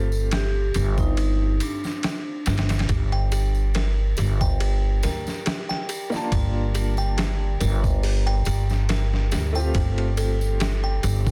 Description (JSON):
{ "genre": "trip hop", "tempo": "70 BPM", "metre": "4/4", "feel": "swing 54% on 16ths", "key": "G minor", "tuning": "A4 = 442 Hz", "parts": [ { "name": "vibraphone with medium hard mallets", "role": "melody", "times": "0.0-2.7 s", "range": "D4 to A4", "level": "-33 LUFS", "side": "equal", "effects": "tape echo" }, { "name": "clear upright piano", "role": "accompaniment", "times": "0.0-11.3 s", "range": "A3 to A5", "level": "-35 LUFS", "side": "equal", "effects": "tremolo, tape echo" }, { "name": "upright bass", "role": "bass", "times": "0.0-11.3 s", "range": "G1 to D2", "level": "-24 LUFS", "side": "equal", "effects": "none" }, { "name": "tambourine", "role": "percussion", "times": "0.1-11.3 s", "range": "none", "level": "-43 LUFS", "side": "equal", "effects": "none" }, { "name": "trip hop sampler-style drum kit", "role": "drums", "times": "0.3-11.3 s", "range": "hi-hat, kick drum, ride cymbal, snare drum", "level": "-31 LUFS", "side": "equal", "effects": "overdrive" }, { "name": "music box", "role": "arpeggios", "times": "2.9-11.3 s", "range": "G4 to G5", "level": "-34 LUFS", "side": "equal", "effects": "vintage 12-bit sampler grit, digital delay" } ], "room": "small room ambience", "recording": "dense, heavily limited modern master", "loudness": "-23 LUFS", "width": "mono", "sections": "0.0-11.3 A section", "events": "none", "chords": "0.0 Fadd9/G; 2.9 Gm9" }